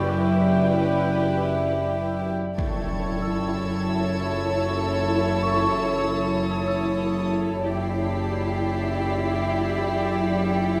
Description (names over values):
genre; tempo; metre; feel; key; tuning
cinematic, suspense film score; free time; none; none; F# phrygian; A4 = 441 Hz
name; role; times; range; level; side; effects
dark studio violin section; melody; 0.0-10.8 s; B4 to D5; -40 LUFS; equal; none
warm symphonic violin section; second line; 0.0-10.8 s; E4 to A4; -32 LUFS; equal; none
deep dark ambient pad; sustained chords; 0.0-10.8 s; E4 to A5; -30 LUFS; equal; chorus, built-in reverb
rich studio double bass section; bass; 0.0-10.8 s; F#1; -31 LUFS; equal; none
warm symphonic cello section; bass; 0.0-10.8 s; F#2; -30 LUFS; equal; none
celesta; texture; 0.0-10.8 s; D5 to E6; -34 LUFS; equal; none
dark symphonic viola section; accompaniment; 2.6-10.8 s; E4; -32 LUFS; equal; none
impact; sound effects; 2.6-5.1 s; none; -34 LUFS; equal; none
warm symphonic violin section; texture; 2.6-10.8 s; C#6 to B#6; -37 LUFS; equal; none
room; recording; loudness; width
wet scoring stage reverb, RT60 1.6 s; none; -24 LUFS; mono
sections
0.0-2.6 A section; 2.6-10.8 A section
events
impact 2.6-5.1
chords
0.0 Em7/F#; 2.6 F#m7; 7.6 Em7/F#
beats
free time